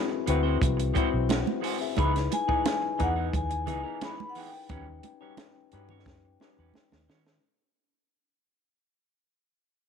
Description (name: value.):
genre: lush 1970s-style soul.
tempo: 88 BPM.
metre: 4/4.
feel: straight.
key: unclear.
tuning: A4 = 441 Hz.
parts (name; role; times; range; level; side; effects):
tine electric piano; accompaniment; 0.0-7.4 s; B#3 to G#5; -32 LUFS; left 13 dB; medium stereo tremolo.
electric guitar through a small old amp; riff; 0.1-7.3 s; E3 to C#5; -37 LUFS; right 14 dB; none.
vintage muted fingered electric bass; bass; 0.3-7.4 s; B1 to D#3; -29 LUFS; right 1 dB; none.
compact cocktail drum kit; drums; 0.3-7.4 s; hi-hat, kick drum, snare drum; -31 LUFS; right 1 dB; none.
congas; percussion; 0.6-7.1 s; none; -36 LUFS; right 12 dB; none.
vibraphone with soft mallets; melody; 2.0-7.1 s; F#5 to B5; -32 LUFS; left 2 dB; none.
room: light reverb, studio reverb.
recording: 1960s-style stereo with parts hard left and right.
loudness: -25 LUFS.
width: side -7 dB against mid.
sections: 0.0-7.4 A section.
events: fade-out 0.0-7.4; drum fill 6.1-7.4.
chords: 0.0 G#7alt; 2.0 C#m9; 4.7 D#7alt.